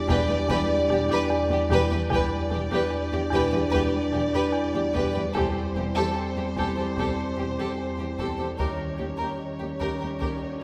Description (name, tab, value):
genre	cinematic, suspense film score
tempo	74 BPM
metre	4/4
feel	straight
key	E minor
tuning	A4 = 440 Hz
part	rich chamber violin section	melody	0.0-10.6 s	C5 to D5	-34 LUFS	equal	none
part	dark French horn section	sustained chords	0.0-10.6 s	G3 to D4	-32 LUFS	equal	none
part	rich chamber violin section	second line	0.1-10.4 s	G4 to B4	-33 LUFS	equal	none
part	rich studio viola section	accompaniment	0.1-10.6 s	G4	-35 LUFS	equal	none
part	marimba with hard mallets	riff	0.1-10.5 s	E2 to D#3	-34 LUFS	equal	none
part	clear chamber double bass section	bass	0.1-10.3 s	E1 to D#2	-38 LUFS	equal	none
part	rich studio cello section	bass	0.1-10.3 s	D#2 to E2	-37 LUFS	equal	none
part	taiko ensemble	drums	0.1-10.6 s	none	-38 LUFS	equal	none
part	reverse cymbal	sound effects	10.6 s	none	barely audible	none	none
room	wet concert hall reverb, RT60 2.6 s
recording	none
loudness	-26 LUFS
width	mono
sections	0.0-10.6 A section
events	none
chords	0.0 Em7; 5.4 Am7/E; 8.6 D#7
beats	0.49 1.30 | 2.11 2.92 3.73 4.54 | 5.36 6.17 6.98 7.79 | 8.60 9.41 10.22